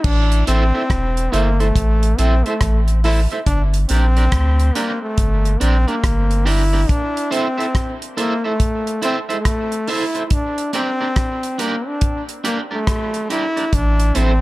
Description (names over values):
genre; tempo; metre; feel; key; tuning
dub reggae; 70 BPM; 4/4; swing 63% on 16ths; A phrygian; A4 = 437 Hz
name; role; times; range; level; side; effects
brilliant trombone; melody; 0.0-14.4 s; A3 to E4; -22 LUFS; left 1 dB; dub echo
warm sub bass; bass; 0.0-6.9, 13.7-14.4 s; E1 to D2; -16 LUFS; equal; none
damped 70s drum kit; drums; 0.0-14.4 s; crash cymbal, hi-hat, kick drum, rim click; -21 LUFS; equal; none
electric guitar at the edge of break-up; accompaniment; 0.5-14.3 s; C4 to E5; -24 LUFS; right 3 dB; tremolo, dub echo
room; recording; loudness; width
studio reverb; none; -16 LUFS; side -19 dB against mid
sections
0.0-14.4 A section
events
break 6.9-13.7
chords
0.0 Am; 3.5 Gm; 6.9 Am; 10.3 Gm; 13.7 Am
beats
| 0.04 0.90 1.75 2.61 | 3.46 4.32 5.18 6.03 | 6.89 7.74 8.60 9.45 | 10.31 11.16 12.02 12.87 | 13.73